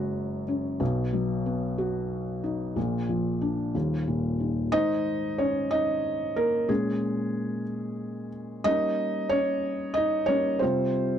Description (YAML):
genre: pop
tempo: 61 BPM (dotted quarters)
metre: 6/8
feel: straight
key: Eb minor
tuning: A4 = 440 Hz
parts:
  - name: felt-muted upright piano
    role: solo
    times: 0.0-11.2 s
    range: Eb1 to Eb5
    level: -25 LUFS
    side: equal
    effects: none
room: light reverb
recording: dry, close 1970s-style studio recording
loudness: -25 LUFS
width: side -9 dB against mid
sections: 0.0-4.7 A section; 4.7-11.2 A section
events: felt piano solo 4.7-11.2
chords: 0.0 Gbsus2; 0.8 B; 2.8 Bb; 3.7 Eb5; 4.7 Abadd9; 6.7 Bbm7; 8.7 Gdim; 10.6 Csus4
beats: | 0.80 1.78 | 2.77 3.75 | 4.73 5.71 | 6.69 7.67 | 8.66 9.64 | 10.62